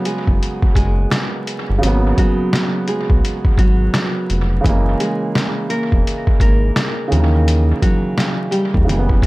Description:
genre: hip hop, boom-bap hip-hop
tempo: 85 BPM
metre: 4/4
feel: swing 62% on 16ths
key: G# minor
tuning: A4 = 438 Hz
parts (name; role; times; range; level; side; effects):
- nylon-string guitar; melody; 0.0-9.3 s; F#3 to A#4; -23 LUFS; equal; high-pass filter, low-pass filter, dub echo
- dark baby grand piano; accompaniment; 0.0-9.3 s; C#3 to B3; -22 LUFS; right 2 dB; cassette tape, high-pass filter, low-pass filter
- trip hop sampler-style drum kit; drums; 0.1-9.3 s; hi-hat, kick drum, snare drum; -18 LUFS; equal; dub echo
- round analog bass; bass; 0.3-9.3 s; E1 to D#2; -16 LUFS; equal; none
room: little or no reverb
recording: echo-heavy mix, vinyl crackle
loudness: -14 LUFS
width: side -20 dB against mid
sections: 0.0-9.3 A section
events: none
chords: 0.0 G#m11; 4.6 F#9; 7.1 D#7b9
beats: 0.41 1.12 | 1.82 2.53 3.23 3.94 | 4.65 5.35 6.06 6.76 | 7.47 8.18 8.88

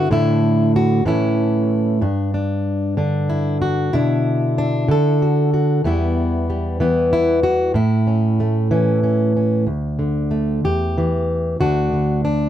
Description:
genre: folk, solo fingerstyle acoustic guitar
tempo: 63 BPM (dotted quarters)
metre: 6/8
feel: straight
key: D major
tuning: A4 = 440 Hz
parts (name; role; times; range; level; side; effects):
- fingerpicked plugged-in steel-string acoustic guitar; solo; 0.0-12.5 s; D2 to A4; -16 LUFS; equal; none
room: light reverb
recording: none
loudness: -16 LUFS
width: side -11 dB against mid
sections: 0.0-9.7 A section; 9.7-12.5 B section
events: none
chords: 0.1 Asus4; 1.1 A; 2.0 G5; 3.9 Bm7; 5.8 Em; 7.8 A; 9.7 D5; 10.6 N.C.; 11.6 D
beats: | 0.11 1.07 | 2.02 2.98 | 3.94 4.89 | 5.85 6.80 | 7.76 8.72 | 9.68 10.64 | 11.60

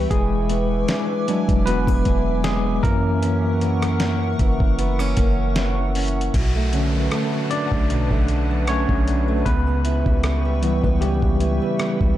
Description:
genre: contemporary R&B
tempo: 77 BPM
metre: 4/4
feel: swing 54% on 16ths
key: B minor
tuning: A4 = 440 Hz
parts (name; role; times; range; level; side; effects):
- barky tine electric piano; accompaniment; 0.0-12.2 s; D3 to D5; -23 LUFS; left 1 dB; fast stereo tremolo
- glassy FM pad; sustained chords; 0.0-12.2 s; A#4 to D6; -29 LUFS; left 1 dB; ensemble chorus, built-in reverb, sidechain pumping
- fingerpicked steel-string acoustic guitar; arpeggios; 0.0-12.2 s; F#2 to G#4; -28 LUFS; right 5 dB; tape echo
- long sustained 808-style bass; bass; 0.0-12.2 s; E1 to F#2; -22 LUFS; equal; none
- dusty soul sampler-style drum kit; drums; 0.1-12.2 s; crash cymbal, hi-hat, kick drum, rim click, snare drum; -23 LUFS; equal; none
- downlifter; sound effects; 6.3-12.2 s; none; -35 LUFS; equal; none
room: little or no reverb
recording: dark, warm production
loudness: -18 LUFS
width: side -13 dB against mid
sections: 0.0-6.3 A section; 6.3-12.2 B section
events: tine electric piano solo 0.0-6.3, 6.3-12.2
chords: 0.1 E7; 2.8 F#7; 6.3 Bm7; 9.5 C#m7b5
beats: | 0.11 0.89 1.67 2.44 | 3.22 4.00 4.78 5.56 | 6.34 7.12 7.90 8.68 | 9.46 10.24 11.02 11.79

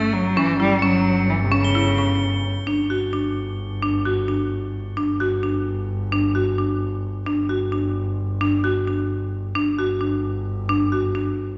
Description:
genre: contemporary instrumental, chamber music in an uneven meter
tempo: 262 BPM (eighths)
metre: 5/8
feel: straight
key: unclear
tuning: A4 = 442 Hz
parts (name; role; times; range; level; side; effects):
- rich cello; second line; 0.0-2.4 s; C3 to A3; -24 LUFS; equal; none
- marimba with hard mallets; arpeggios; 0.0-11.5 s; C#4 to F#4; -25 LUFS; equal; none
- clear double bass; bass; 0.0-11.6 s; G1; -28 LUFS; equal; none
- crotales; texture; 0.0-2.8 s; A6 to G7; -33 LUFS; equal; none
room: wet scoring stage reverb, RT60 1.8 s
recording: recorded in a church or concert hall, nothing above 7.9 kHz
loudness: -22 LUFS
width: mono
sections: 0.0-2.7 A section; 2.7-11.6 B section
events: none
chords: 0.0 A/G; 2.7 G5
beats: 0.14 | 0.37 0.60 0.83 1.06 1.29 | 1.52 1.75 1.98 2.21 2.44 | 2.67 2.90 3.13 3.36 3.59 | 3.82 4.05 4.28 4.50 4.74 | 4.96 5.19 5.42 5.65 5.88 | 6.11 6.34 6.57 6.80 7.03 | 7.26 7.49 7.72 7.95 8.18 | 8.40 8.63 8.86 9.09 9.32 | 9.55 9.78 10.01 10.24 10.46 | 10.69 10.92 11.15 11.38

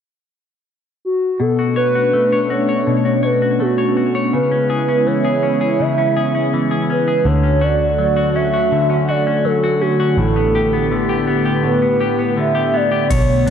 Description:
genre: dream pop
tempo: 82 BPM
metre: 4/4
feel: straight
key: B minor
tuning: A4 = 440 Hz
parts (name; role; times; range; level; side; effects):
- hollow clarinet-like synth lead; melody; 1.0-13.5 s; F#4 to E5; -18 LUFS; right 1 dB; chorus, ping-pong delay
- warm analog pad; sustained chords; 1.4-13.5 s; B2 to G4; -20 LUFS; right 2 dB; chorus
- semi-hollow electric guitar; arpeggios; 1.4-13.5 s; A2 to C#5; -19 LUFS; left 5 dB; wide subtle chorus, ping-pong delay
- vintage muted picked electric bass; bass; 7.3-13.5 s; A1 to D2; -20 LUFS; right 1 dB; none
- booming analog drum machine; drums; 13.1-13.5 s; crash cymbal, hi-hat, kick drum; -20 LUFS; right 1 dB; none
room: moderate plate reverb, RT60 3.0 s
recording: dark, warm production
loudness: -14 LUFS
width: side -8 dB against mid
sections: 0.0-1.4 A section; 1.4-13.1 B section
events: none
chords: 0.0 N.C.; 1.4 Bm9; 4.3 C#m7; 7.3 Dmaj7; 10.2 A9sus4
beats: 0.67 | 1.40 2.13 2.87 3.60 | 4.33 5.06 5.79 6.53 | 7.26 7.99 8.72 9.45 | 10.18 10.91 11.65 12.38 | 13.11

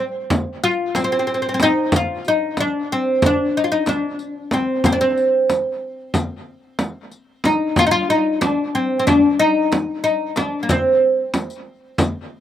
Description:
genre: Turkish makam ensemble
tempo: 185 BPM (eighths)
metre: 9/8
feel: straight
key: unclear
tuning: A4 = 440 Hz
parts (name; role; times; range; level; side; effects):
- oud; melody; 0.0-12.4 s; Bb3 to F4; -17 LUFS; equal; slapback echo
- frame drum; percussion; 0.3-12.1 s; none; -21 LUFS; right 1 dB; none
- riq; percussion; 0.3-12.1 s; none; -28 LUFS; left 5 dB; slapback echo
room: little or no reverb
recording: recorded outdoors, with no room sound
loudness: -16 LUFS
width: side -10 dB against mid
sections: 0.0-1.9 A section; 1.9-12.4 B section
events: none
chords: none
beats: 0.29 0.62 0.94 1.26 1.59 | 1.92 2.24 2.56 2.89 3.21 3.54 3.86 4.19 4.51 | 4.84 5.16 5.49 5.81 6.14 6.46 6.79 7.11 7.44 | 7.76 8.09 8.41 8.74 9.06 9.39 9.71 10.04 10.36 | 10.69 11.01 11.34 11.66 11.99 12.31

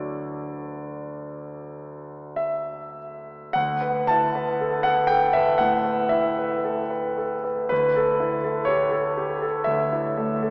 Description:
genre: classical, impressionist solo piano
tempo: 50-62 BPM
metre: 4/4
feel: rubato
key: D major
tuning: A4 = 441 Hz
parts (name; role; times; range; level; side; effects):
- clear concert grand piano; solo; 0.0-10.5 s; D2 to A5; -24 LUFS; equal; none
room: wet cathedral reverb, RT60 5.3 s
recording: small speaker sound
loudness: -24 LUFS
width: mono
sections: 0.0-3.6 A section; 3.6-10.5 A section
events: none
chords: 0.0 Dadd9; 3.6 Dsus2; 7.7 Dmaj7sus2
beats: 0.06 1.24 2.39 | 3.55 4.61 5.63 6.66 | 7.71 8.70 9.69

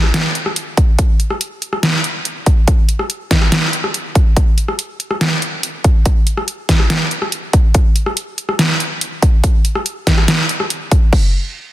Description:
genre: heavy wobble dubstep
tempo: 142 BPM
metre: 4/4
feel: half-time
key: none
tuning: none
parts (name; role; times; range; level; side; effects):
- dubstep drum kit; drums; 0.0-11.0 s; hi-hat, rim click, snare drum; -16 LUFS; equal; overdrive
- dubstep drum kit; drums; 0.8-11.2 s; crash cymbal, kick drum; -12 LUFS; equal; overdrive
room: little or no reverb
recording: dense, heavily limited modern master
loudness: -13 LUFS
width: side -15 dB against mid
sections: 0.0-11.1 A section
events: none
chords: none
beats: 0.14 0.56 | 0.98 1.41 1.83 2.25 | 2.67 3.10 3.52 3.94 | 4.37 4.79 5.21 5.63 | 6.06 6.48 6.90 7.32 | 7.75 8.17 8.59 9.01 | 9.44 9.86 10.28 10.70 | 11.13

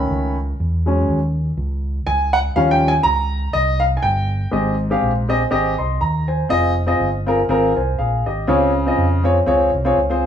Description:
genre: uptempo gospel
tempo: 122 BPM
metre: 4/4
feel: swing 55% on 8ths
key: Ab major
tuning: A4 = 439 Hz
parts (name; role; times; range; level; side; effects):
- warm upright piano; accompaniment; 0.0-10.3 s; Ab2 to C6; -17 LUFS; equal; none
- fingered electric bass; bass; 0.0-10.3 s; F1 to F2; -20 LUFS; equal; none
room: moderate large studio reverb, RT60 1.1 s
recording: band playing live in one room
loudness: -16 LUFS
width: side -9 dB against mid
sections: 0.0-4.5 A section; 4.5-10.3 B section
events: upright piano solo 0.0-4.5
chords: 0.0 B7; 0.6 E6; 2.6 Eb7; 4.5 Abmaj7; 6.5 Fm7; 8.5 Dbmaj7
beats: 0.11 | 0.60 1.09 1.58 2.07 | 2.56 3.06 3.55 4.04 | 4.53 5.03 5.52 6.01 | 6.51 7.00 7.49 7.99 | 8.48 8.98 9.47 9.96

